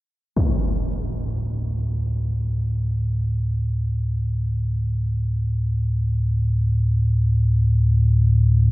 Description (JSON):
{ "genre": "dark ambient drone", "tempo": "free time", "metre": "none", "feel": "none", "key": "unclear", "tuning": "A4 = 440 Hz", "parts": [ { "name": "deep rumbling drone", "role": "drone", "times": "0.8-8.7 s", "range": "D2 to A2", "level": "-19 LUFS", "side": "equal", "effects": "built-in reverb, analog chorus" }, { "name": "impact", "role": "percussion", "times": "0.4-0.6 s", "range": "none", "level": "-25 LUFS", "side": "equal", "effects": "low-pass filter on sfx" } ], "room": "wet cathedral reverb, RT60 5.6 s", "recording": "dreamy mix soaked in reverb", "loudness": "-19 LUFS", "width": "side -20 dB against mid", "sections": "0.4-8.7 A section", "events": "none", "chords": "0.4 D5" }